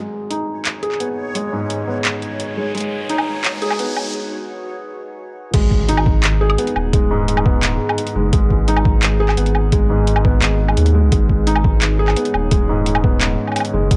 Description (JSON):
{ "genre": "half-time drum and bass", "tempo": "172 BPM", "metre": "4/4", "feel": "half-time", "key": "G# minor", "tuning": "A4 = 439 Hz", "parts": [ { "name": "deep dark ambient pad", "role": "sustained chords", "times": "1.3-14.0 s", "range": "G#3 to C#5", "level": "-30 LUFS", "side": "equal", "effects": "chorus, built-in reverb, vintage 12-bit sampler grit, sidechain pumping" }, { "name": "felt-muted upright piano", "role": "arpeggios", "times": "0.0-14.0 s", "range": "G#2 to G#4", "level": "-23 LUFS", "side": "equal", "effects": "low-pass filter, tape echo" }, { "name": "saturated sub bass", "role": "bass", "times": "0.0-14.0 s", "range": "D#1 to D#2", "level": "-20 LUFS", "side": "equal", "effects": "tube saturation, high-pass filter" }, { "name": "riser and impact", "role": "sound effects", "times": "1.6-6.9 s", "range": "none", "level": "-33 LUFS", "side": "equal", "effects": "none" }, { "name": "backwards swelling texture", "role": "texture", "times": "0.8-4.1 s", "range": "C#5", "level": "-34 LUFS", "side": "equal", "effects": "built-in reverb" }, { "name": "drum and bass drum kit", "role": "drums", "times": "0.3-14.0 s", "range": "crash cymbal, handclaps, hi-hat, woodblock", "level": "-23 LUFS", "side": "equal", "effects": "none" }, { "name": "electronic kick drum", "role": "drums", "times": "5.5-14.0 s", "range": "none", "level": "-18 LUFS", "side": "equal", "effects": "overdrive" } ], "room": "little or no reverb", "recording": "dry, gritty hardware recording, cassette tape, high-pass filter", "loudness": "-17 LUFS", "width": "mono", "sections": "0.0-5.5 A section; 5.5-14.0 B section", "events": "build-up 0.0-5.5; filter sweep on felt piano 0.0-5.5; riser 1.6-4.1; break 4.1-5.5; drop 5.5-14.0; impact 5.5-6.9", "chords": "0.0 G#m" }